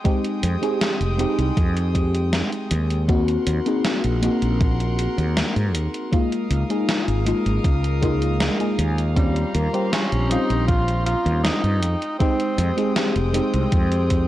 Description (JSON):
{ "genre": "vaporwave", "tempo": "79 BPM", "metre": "4/4", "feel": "straight", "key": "F minor", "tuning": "A4 = 439 Hz", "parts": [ { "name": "mellow FM electric piano", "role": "accompaniment", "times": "0.0-14.3 s", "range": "G3 to C5", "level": "-24 LUFS", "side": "left 1 dB", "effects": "phaser, analog chorus, tape echo" }, { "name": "rich chamber string section", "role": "sustained chords", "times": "0.0-14.3 s", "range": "Ab3 to Eb6", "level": "-33 LUFS", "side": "equal", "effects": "none" }, { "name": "electronic kick drum", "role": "drums", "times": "0.0-14.3 s", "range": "none", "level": "-20 LUFS", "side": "equal", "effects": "none" }, { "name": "gated 80s digital drum machine", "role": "drums", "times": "0.0-14.3 s", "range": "hi-hat, snare drum", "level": "-25 LUFS", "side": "equal", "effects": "gated reverb, gated reverb snare" }, { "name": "mellow fretless electric bass", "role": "bass", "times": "0.4-14.3 s", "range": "F1 to Ab2", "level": "-21 LUFS", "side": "equal", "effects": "none" }, { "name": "breathy tenor saxophone", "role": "melody", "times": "9.2-14.3 s", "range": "G3 to F4", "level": "-26 LUFS", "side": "equal", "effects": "tape echo" } ], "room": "light reverb", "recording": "dry, gritty hardware recording, cassette tape", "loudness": "-19 LUFS", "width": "side -14 dB against mid", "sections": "0.0-14.3 A section", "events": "none", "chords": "0.0 Fm9; 3.1 Ab9; 6.1 Db69; 9.2 Eb13; 11.8 Fm9" }